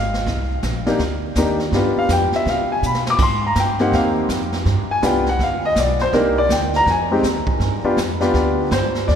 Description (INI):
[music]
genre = jazz piano trio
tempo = 164 BPM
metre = 4/4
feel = swing 64% on 8ths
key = unclear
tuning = A4 = 440 Hz
[part]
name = clear grand piano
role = melody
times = 0.0-9.2 s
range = Ab3 to D6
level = -18 LUFS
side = left 1 dB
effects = none
[part]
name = upright bass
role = bass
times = 0.0-9.2 s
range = Ab1 to C3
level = -22 LUFS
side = right 1 dB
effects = none
[part]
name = jazz brush drum kit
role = drums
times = 0.1-9.2 s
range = brushed snare drum, crash cymbal, hi-hat, kick drum, snare drum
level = -25 LUFS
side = right 2 dB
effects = none
[sound]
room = wet cathedral reverb, RT60 7.0 s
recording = recorded in a church or concert hall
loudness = -16 LUFS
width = side -8 dB against mid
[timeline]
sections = 0.0-9.1 A section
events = grand piano solo 0.0-9.1; drum fill 2.8-3.2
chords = 0.3 Cm9; 1.7 G7; 3.2 Abmaj7; 4.7 G7; 6.1 Cm9; 6.9 Fm7; 7.6 G7